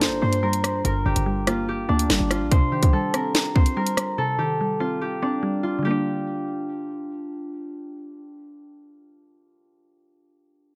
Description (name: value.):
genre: hip hop, drill.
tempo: 144 BPM.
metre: 4/4.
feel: half-time.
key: G minor.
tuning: A4 = 439 Hz.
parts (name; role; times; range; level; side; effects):
concert harp; melody; 0.0-8.2 s; D4 to C5; -29 LUFS; equal; delay.
breathy flute-like synth lead; second line; 0.0-0.8 s; C5; -34 LUFS; equal; chorus, delay.
mallet-like synth pluck; accompaniment; 0.0-9.8 s; G2 to D4; -30 LUFS; equal; chorus.
short 808-style bass; bass; 0.0-2.5 s; G1 to G2; -28 LUFS; equal; none.
drill drum kit; drums; 0.0-4.1 s; hi-hat, kick drum, rim click, snare drum; -23 LUFS; equal; none.
room: little or no reverb.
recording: none.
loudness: -23 LUFS.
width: mono.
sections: 0.0-5.8 A section; 5.8-9.2 B section.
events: none.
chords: 0.0 Gm; 2.5 Cmadd9; 5.8 Gm.